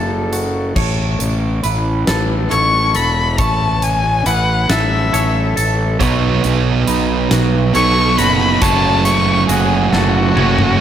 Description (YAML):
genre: post-rock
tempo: 46 BPM (dotted quarters)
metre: 6/8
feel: straight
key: A lydian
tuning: A4 = 439 Hz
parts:
  - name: electric guitar through a small old amp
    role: arpeggios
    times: 0.0-10.4 s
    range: F#4 to C#5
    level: -25 LUFS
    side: right 3 dB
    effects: phaser, digital delay
  - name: twangy electric guitar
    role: arpeggios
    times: 0.0-10.8 s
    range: F#3 to C#5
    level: -24 LUFS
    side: left 2 dB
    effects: digital delay
  - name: fuzz fingered electric bass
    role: bass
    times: 0.0-10.8 s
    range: E1 to B1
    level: -18 LUFS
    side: left 1 dB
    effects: overdrive
  - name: huge arena drum kit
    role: drums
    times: 0.3-10.8 s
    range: crash cymbal, hi-hat, kick drum, snare drum, toms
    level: -22 LUFS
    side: equal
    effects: none
  - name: dark violin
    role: melody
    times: 2.5-10.8 s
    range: F#4 to C#6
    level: -17 LUFS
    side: left 3 dB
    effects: digital delay
  - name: sludgy distorted guitar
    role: riff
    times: 6.0-10.8 s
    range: F#2 to D#4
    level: -16 LUFS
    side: right 8 dB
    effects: overdrive
room: light reverb, studio reverb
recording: none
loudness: -12 LUFS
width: side -10 dB against mid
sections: 0.8-10.8 A section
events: drum fill 9.9-10.8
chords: 0.0 F#m; 0.8 A; 6.0 Badd9; 8.6 F#m